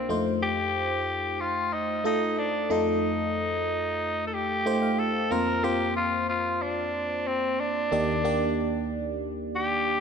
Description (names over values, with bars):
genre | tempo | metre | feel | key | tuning
pop | 92 BPM | 4/4 | straight | unclear | A4 = 440 Hz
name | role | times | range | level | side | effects
raspy tenor saxophone | melody | 0.0-10.0 s | C4 to Bb4 | -27 LUFS | left 1 dB | tape echo
FM electric piano | accompaniment | 0.0-10.0 s | Eb2 to G5 | -28 LUFS | equal | chorus, phaser
room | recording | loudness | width
moderate lush hall reverb, RT60 2.5 s | none | -24 LUFS | side -6 dB against mid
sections
0.0-5.3 A section; 5.3-10.0 B section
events
FM electric piano fill 4.3-5.3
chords
0.1 F7; 5.3 Fsus4; 7.9 Ebmaj7